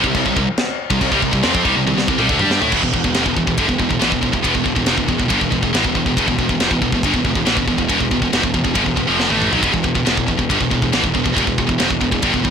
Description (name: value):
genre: heavy metal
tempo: 139 BPM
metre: 4/4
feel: straight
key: E phrygian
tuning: A4 = 440 Hz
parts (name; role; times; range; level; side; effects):
- scooped high-gain guitar; riff; 0.0-12.5 s; E2 to G4; -16 LUFS; equal; distortion
- fuzz picked electric bass; bass; 0.0-12.5 s; E1 to A2; -23 LUFS; equal; overdrive, transformer saturation
- tight metal drum kit; drums; 0.0-12.5 s; china cymbal, crash cymbal, kick drum, ride cymbal, snare drum, toms; -21 LUFS; equal; none
room: light reverb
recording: blown-out, overdriven recording, overdrive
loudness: -14 LUFS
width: side -7 dB against mid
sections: 0.0-2.7 A section; 2.7-12.5 B section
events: drum fill 1.9-2.7, 9.2-9.6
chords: 0.0 C5; 2.7 Em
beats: 0.15 0.58 | 1.01 1.44 1.87 2.30 | 2.73 3.16 3.59 4.02 | 4.45 4.88 5.31 5.74 | 6.17 6.61 7.04 7.47 | 7.90 8.33 8.77 9.20 | 9.63 10.06 10.50 10.93 | 11.37 11.80 12.23